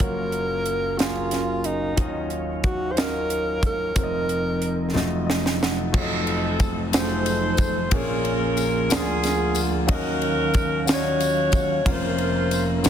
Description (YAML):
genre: slow gospel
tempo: 61 BPM (dotted quarters)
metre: 6/8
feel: straight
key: Bb minor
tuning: A4 = 439 Hz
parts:
  - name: breathy tenor saxophone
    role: melody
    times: 0.0-4.9 s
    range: Eb4 to C5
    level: -26 LUFS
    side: equal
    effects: none
  - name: clear concert grand piano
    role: accompaniment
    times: 0.0-12.9 s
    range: F1 to Gb5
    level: -27 LUFS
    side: left 3 dB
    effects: none
  - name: mellow tonewheel organ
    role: sustained chords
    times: 0.0-12.9 s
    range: D2 to F5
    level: -28 LUFS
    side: right 4 dB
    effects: slow rotary speaker
  - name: crisp fusion drum kit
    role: drums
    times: 0.0-12.9 s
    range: crash cymbal, hi-hat, kick drum, ride cymbal, snare drum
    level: -25 LUFS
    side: equal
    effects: soft clipping on kick
  - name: mellow horn section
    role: melody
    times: 6.0-12.9 s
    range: C4 to Db5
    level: -25 LUFS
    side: left 1 dB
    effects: none
  - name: tambourine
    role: percussion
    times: 6.6-12.9 s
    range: none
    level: -34 LUFS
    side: left 8 dB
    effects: none
room: light reverb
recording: dense, heavily limited modern master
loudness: -20 LUFS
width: side -9 dB against mid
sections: 0.0-5.9 A section; 5.9-12.9 B section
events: drum fill 4.9-5.9; grand piano fill 4.9-5.9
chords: 0.0 Gbmaj7; 2.0 Ebm9; 4.0 F7sus4; 4.9 F7b9; 7.9 Bbm7; 8.9 Bb7/D; 9.9 Ebm9; 11.9 Bbm/F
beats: | 0.01 1.00 | 1.98 2.97 | 3.96 4.95 | 5.93 6.92 | 7.91 8.89 | 9.88 10.87 | 11.85 12.84